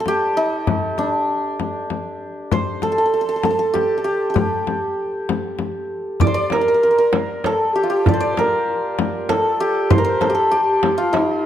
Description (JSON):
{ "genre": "Persian modal ensemble", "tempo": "98 BPM", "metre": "3/4", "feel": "straight", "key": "D dastgah shur", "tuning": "A4 = 440 Hz", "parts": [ { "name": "santur", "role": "melody", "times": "0.0-11.5 s", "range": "D4 to D5", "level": "-18 LUFS", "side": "right 1 dB", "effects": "none" }, { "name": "frame drum", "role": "percussion", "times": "0.1-11.3 s", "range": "none", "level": "-23 LUFS", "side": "left 6 dB", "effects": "none" }, { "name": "breathy mellow ney", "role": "second line", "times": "6.2-11.5 s", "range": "Eb4+33c to D5", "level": "-25 LUFS", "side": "left 3 dB", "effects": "none" }, { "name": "tombak", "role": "percussion", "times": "6.2-11.3 s", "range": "none", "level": "-22 LUFS", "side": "right 5 dB", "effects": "none" } ], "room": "moderate recital hall reverb, RT60 1.5 s", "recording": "close, detailed microphones", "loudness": "-17 LUFS", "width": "side -10 dB against mid", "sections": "0.0-11.5 A section", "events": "none", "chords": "none", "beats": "0.06 | 0.67 1.29 1.91 | 2.52 3.14 3.75 | 4.37 4.98 5.60 | 6.21 6.83 7.45 | 8.06 8.68 9.29 | 9.90 10.52 11.13" }